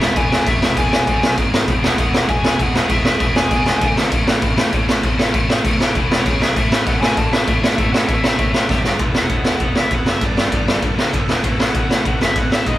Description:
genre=punk rock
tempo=197 BPM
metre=4/4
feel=straight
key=E mixolydian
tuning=A4 = 440 Hz
part: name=biting lead guitar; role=melody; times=0.0-3.9, 6.1-12.8 s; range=C#5 to A5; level=-23 LUFS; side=left 1 dB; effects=overdrive
part: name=distorted electric guitar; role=riff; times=0.0-12.8 s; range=G2 to D5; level=-23 LUFS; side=equal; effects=distortion
part: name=fuzz picked electric bass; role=bass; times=0.0-12.8 s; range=E1 to A2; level=-26 LUFS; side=equal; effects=overdrive
part: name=raw garage drum kit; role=drums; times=0.0-12.7 s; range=crash cymbal, kick drum, ride cymbal, snare drum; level=-16 LUFS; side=equal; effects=none
room=light reverb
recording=band playing live in one room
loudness=-14 LUFS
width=side -14 dB against mid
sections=0.0-9.0 A section; 9.0-12.8 B section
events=drum fill 8.7-9.0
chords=0.0 E; 1.1 B5; 1.4 G#5; 1.7 E; 3.8 D5; 4.1 A; 6.0 E5; 6.3 C#5; 6.6 A; 8.7 G5; 9.0 E; 10.2 G; 11.4 A

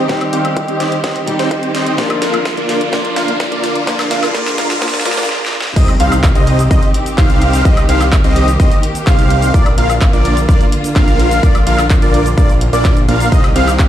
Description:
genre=EDM, festival progressive house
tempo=127 BPM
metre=4/4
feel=straight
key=C minor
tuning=A4 = 440 Hz
part: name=fingerpicked steel-string acoustic guitar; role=accompaniment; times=0.0-5.3 s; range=F3 to G4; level=-20 LUFS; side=left 2 dB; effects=sidechain pumping, dub echo
part: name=warm studio string section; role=sustained chords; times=0.0-13.9 s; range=D3 to G4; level=-22 LUFS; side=equal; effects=sidechain pumping, low-pass filter
part: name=big supersaw lead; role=riff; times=0.0-13.7 s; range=Bb3 to G5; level=-18 LUFS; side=right 1 dB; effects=phaser, sidechain pumping, low-pass filter, dub echo
part: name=riser and impact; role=sound effects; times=0.6-7.7 s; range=none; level=-24 LUFS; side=equal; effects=none
part: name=electronic kick drum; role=drums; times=0.1-13.9 s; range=none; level=-11 LUFS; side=equal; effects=overdrive, high-pass filter on kick
part: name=pop drum kit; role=drums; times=0.1-13.9 s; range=crash cymbal, handclaps, hi-hat, ride cymbal, shaker, snare drum, woodblock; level=-22 LUFS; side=equal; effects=overdrive, high-pass filter on hats, high-pass filter on snare, high-pass filter on perc, high-pass filter on cymbals, high-pass filter on room
part: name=wide unison lead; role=arpeggios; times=5.8-13.7 s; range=D5 to F5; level=-19 LUFS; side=left 1 dB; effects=ensemble chorus, sidechain pumping, dub echo
part: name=fat analog bass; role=bass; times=5.8-13.9 s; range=Bb1 to C2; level=-15 LUFS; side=equal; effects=sidechain pumping
room=light reverb, digital ambience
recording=played on a big sound system in a bare room, stone room reverb, high-pass filter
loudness=-11 LUFS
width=side -11 dB against mid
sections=0.0-5.8 A section; 5.8-13.9 B section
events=build-up 0.0-5.8; drum fill 0.0-5.3, 5.3-5.8; filter sweep on supersaw synth 0.0-5.8; filter sweep on string section 0.0-5.8; filter sweep 0.0-5.8; riser 0.6-5.3; break 5.3-5.8; drop 5.8-13.9; impact 5.8-7.7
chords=0.0 Cm; 2.0 Bb; 5.8 Cm; 9.5 Bb; 13.3 Cm

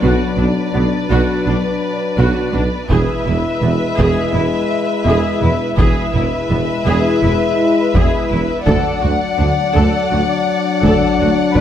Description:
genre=cinematic, epic orchestral film score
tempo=83 BPM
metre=4/4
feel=straight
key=unclear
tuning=A4 = 440 Hz
part: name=rich symphonic violin section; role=melody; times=0.0-11.6 s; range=D5 to F#5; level=-23 LUFS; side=left 4 dB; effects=none
part: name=rich studio violin section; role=second line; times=0.0-11.6 s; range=B4 to D5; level=-23 LUFS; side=left 1 dB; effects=none
part: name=rich symphonic viola section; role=accompaniment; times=0.0-11.6 s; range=B3 to B4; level=-23 LUFS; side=right 1 dB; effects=none
part: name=mellow French horn section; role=sustained chords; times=0.0-11.6 s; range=F#3 to E4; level=-19 LUFS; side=left 4 dB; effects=none
part: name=rich symphonic cello section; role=bass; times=0.0-11.6 s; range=D2 to B2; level=-21 LUFS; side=right 2 dB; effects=none
part: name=rich symphonic double bass section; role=bass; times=0.0-11.6 s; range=E1 to D2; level=-21 LUFS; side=right 2 dB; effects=none
part: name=warm tuba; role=bass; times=0.0-11.6 s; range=E1 to D2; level=-22 LUFS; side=right 3 dB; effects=none
part: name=taiko ensemble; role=drums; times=2.9-11.6 s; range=none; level=-19 LUFS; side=equal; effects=none
room=moderate scoring stage reverb, RT60 1.8 s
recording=none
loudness=-13 LUFS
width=side -10 dB against mid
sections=0.0-11.6 A section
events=build-up 0.0-11.6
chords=0.0 Bm; 2.9 E; 8.7 D

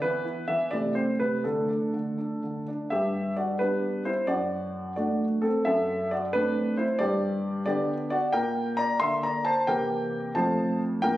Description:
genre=classical-period piano sonatina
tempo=88 BPM (dotted quarters)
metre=6/8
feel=rubato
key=G major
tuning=A4 = 443 Hz
part: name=warm concert grand piano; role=solo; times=0.0-11.2 s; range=F2 to C6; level=-24 LUFS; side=equal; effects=none
room=moderate recital hall reverb, RT60 1.2 s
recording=recorded on a phone in the room, club reverb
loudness=-25 LUFS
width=side -15 dB against mid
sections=0.0-2.9 A section; 2.9-11.2 B section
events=none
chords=0.0 E5; 0.7 Am/C; 1.4 D5; 2.9 G; 4.3 D/F#; 5.7 D7/F#; 7.0 G; 8.3 Gm/Bb; 9.7 C7; 10.4 F

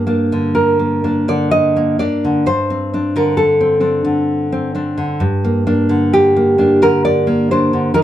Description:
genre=romantic piece for solo classical guitar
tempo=65 BPM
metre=3/4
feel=rubato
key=G minor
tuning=A4 = 441 Hz
part: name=nylon-string guitar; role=solo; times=0.0-8.0 s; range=G2 to Eb5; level=-12 LUFS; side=equal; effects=none
room=light reverb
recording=dark, warm production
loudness=-12 LUFS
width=side -12 dB against mid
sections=0.0-8.0 A section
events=none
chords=0.0 Gm; 2.5 D5/G; 5.2 Gm

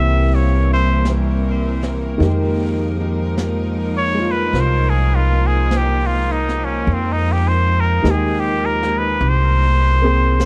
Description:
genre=jazz ballad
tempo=51 BPM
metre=4/4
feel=swing 68% on 8ths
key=F minor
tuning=A4 = 440 Hz
part: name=trumpet with straight mute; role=melody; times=0.0-10.5 s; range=C4 to E5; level=-23 LUFS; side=equal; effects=tape echo
part: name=warm grand piano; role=accompaniment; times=0.0-10.5 s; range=Eb3 to Ab4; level=-26 LUFS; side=equal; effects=tape echo
part: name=rich studio cello section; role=sustained chords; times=0.0-10.5 s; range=E3 to Bb4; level=-27 LUFS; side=equal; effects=none
part: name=upright bass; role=bass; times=0.0-10.5 s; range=C2 to F2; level=-20 LUFS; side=equal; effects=none
part: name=jazz brush drum kit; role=drums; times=1.1-10.5 s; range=brushed snare drum, hi-hat, snare drum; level=-34 LUFS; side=equal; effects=tape echo
room=studio ambience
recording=echo-heavy mix, cassette tape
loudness=-17 LUFS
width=mono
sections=0.0-10.5 A section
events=muted trumpet solo 0.0-10.5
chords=0.0 C7; 2.2 Fm11

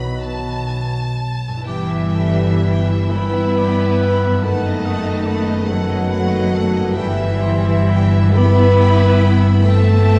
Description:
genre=classical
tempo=40-50 BPM (dotted quarters)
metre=12/8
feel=rubato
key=E minor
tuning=A4 = 440 Hz
part: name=rich chamber violin section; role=melody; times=0.0-10.2 s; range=D#5 to B5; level=-34 LUFS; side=equal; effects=none
part: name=baroque flute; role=second line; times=0.0-10.2 s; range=B4 to B5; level=-32 LUFS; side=equal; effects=none
part: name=mellow cor anglais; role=second line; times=0.0-10.2 s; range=G4 to F#5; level=-34 LUFS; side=equal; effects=none
part: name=rich chamber violin section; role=second line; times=0.0-10.2 s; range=B4 to B5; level=-35 LUFS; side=equal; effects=none
part: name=warm clarinet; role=second line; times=0.0-10.2 s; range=B4 to E5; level=-36 LUFS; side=equal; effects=none
part: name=rich studio viola section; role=accompaniment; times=0.0-10.2 s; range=E3 to E4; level=-28 LUFS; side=equal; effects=none
part: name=warm bassoon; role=accompaniment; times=0.0-10.2 s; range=D#3 to F#3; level=-34 LUFS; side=equal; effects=none
part: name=dark trombone section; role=sustained chords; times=0.0-10.2 s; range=D#3 to B3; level=-32 LUFS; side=equal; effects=none
part: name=warm French horn section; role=sustained chords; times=0.0-10.2 s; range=B3 to B4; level=-24 LUFS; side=equal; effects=none
part: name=concert harp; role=arpeggios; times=0.0-10.2 s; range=F#2 to B4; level=-31 LUFS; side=equal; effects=none
part: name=warm chamber cello section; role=bass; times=0.0-10.2 s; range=B2 to B3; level=-24 LUFS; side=equal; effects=none
part: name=warm chamber double bass section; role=bass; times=0.0-10.2 s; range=F#1 to B1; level=-19 LUFS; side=equal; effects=none
room=wet concert hall reverb, RT60 2.0 s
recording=heard from further back in the room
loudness=-16 LUFS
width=mono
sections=0.0-10.2 A section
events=none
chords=0.0 B; 1.7 Em/G; 4.4 B7/F#; 7.0 Em/G

